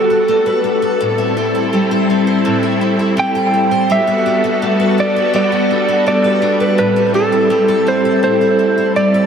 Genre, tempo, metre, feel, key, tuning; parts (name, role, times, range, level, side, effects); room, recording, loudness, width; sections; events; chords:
dream pop; 83 BPM; 4/4; straight; A4 = 441 Hz
electric slide guitar; melody; 0.0-9.3 s; A4 to G5; -15 LUFS; right 2 dB; tape echo
string machine, violas; sustained chords; 0.0-9.3 s; G3 to A4; -16 LUFS; equal; ensemble chorus
picked twelve-string acoustic guitar; arpeggios; 0.0-9.3 s; A2 to C5; -18 LUFS; left 2 dB; lush chorus, tape echo
wet plate reverb, RT60 3.3 s; echo-heavy mix; -12 LUFS; side -7 dB against mid
0.0-9.3 A section
0.0 Gmaj9; 1.0 Am7; 3.9 Gmaj9; 6.8 Am7